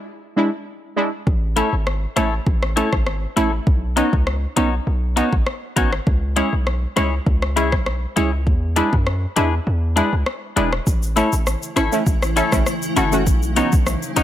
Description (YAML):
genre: dancehall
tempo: 100 BPM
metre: 4/4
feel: straight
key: unclear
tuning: A4 = 436 Hz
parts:
  - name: synth brass stab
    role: accompaniment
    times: 0.4-14.2 s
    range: G#3 to F#4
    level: -22 LUFS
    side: right 2 dB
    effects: chorus
  - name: hard-hitting 808-style bass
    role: bass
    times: 1.3-14.2 s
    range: E1 to F#2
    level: -21 LUFS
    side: equal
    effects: none
  - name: afro-pop drum kit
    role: drums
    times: 1.3-14.2 s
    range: hi-hat, kick drum, rim click, shaker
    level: -21 LUFS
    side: equal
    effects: none
  - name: twangy electric guitar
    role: arpeggios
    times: 1.6-14.2 s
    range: D4 to C#5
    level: -24 LUFS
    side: left 6 dB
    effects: none
  - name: granular cloud pad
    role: sustained chords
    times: 11.6-14.2 s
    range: C#3 to E4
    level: -26 LUFS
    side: equal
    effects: built-in reverb, sidechain pumping
  - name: egg shaker and timbales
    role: percussion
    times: 10.9-14.2 s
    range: none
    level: -36 LUFS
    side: right 5 dB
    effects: none
room: little or no reverb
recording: none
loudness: -17 LUFS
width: side -12 dB against mid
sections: 0.0-10.9 A section; 10.9-14.2 B section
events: kick muted 9.7-10.9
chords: 0.0 E7; 1.3 A; 3.7 Badd9; 6.1 C#m; 8.5 E7; 10.9 A; 13.3 Badd9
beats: 0.07 0.67 | 1.27 1.87 2.47 3.07 | 3.67 4.27 4.87 5.47 | 6.07 6.67 7.27 7.87 | 8.47 9.07 9.67 10.27 | 10.87 11.47 12.07 12.67 | 13.27 13.87